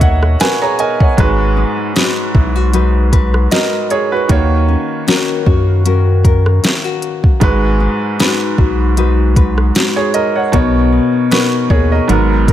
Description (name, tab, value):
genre	contemporary R&B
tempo	77 BPM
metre	4/4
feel	swing 54% on 16ths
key	G# minor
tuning	A4 = 440 Hz
part	clear baby grand piano	accompaniment	0.0-12.5 s	G#2 to A#5	-17 LUFS	right 4 dB	none
part	nylon-string guitar	arpeggios	0.0-12.5 s	D#3 to C#5	-18 LUFS	left 8 dB	tape echo
part	rubbery square bass	bass	0.0-12.5 s	G#1 to F#2	-13 LUFS	equal	none
part	smooth R&B drum kit	drums	0.0-12.5 s	hi-hat, kick drum, rim click, snare drum	-14 LUFS	equal	none
room	small room ambience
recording	none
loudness	-11 LUFS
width	side -12 dB against mid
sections	0.0-12.5 A section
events	grand piano fill 0.0-1.2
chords	0.0 Bmaj9; 1.2 G#m7; 4.3 D#m7; 7.4 G#m7; 10.5 Bmaj9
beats	0.40 | 1.18 1.96 2.74 3.52 | 4.30 5.08 5.86 6.63 | 7.41 8.19 8.97 9.75 | 10.53 11.31 12.09